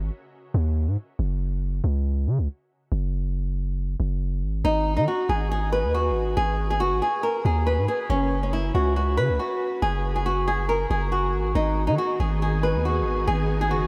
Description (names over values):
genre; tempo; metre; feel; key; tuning
hip hop; 139 BPM; 4/4; half-time; G# minor; A4 = 439 Hz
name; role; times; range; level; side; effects
long sustained 808-style bass; bass; 0.0-13.9 s; F#1 to D#3; -27 LUFS; equal; none
flamenco guitar; melody; 4.6-13.9 s; C#4 to B4; -26 LUFS; equal; analog delay
ethereal airy pad; sustained chords; 12.1-13.9 s; D#3 to G#4; -32 LUFS; equal; ensemble chorus, built-in reverb
room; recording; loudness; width
moderate huge ambient reverb, RT60 7.1 s; dreamy mix soaked in reverb; -24 LUFS; mono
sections
0.0-13.9 A section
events
break 0.0-4.6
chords
0.0 G#5; 1.2 F#5; 4.6 G#5; 8.1 F#5; 11.6 G#m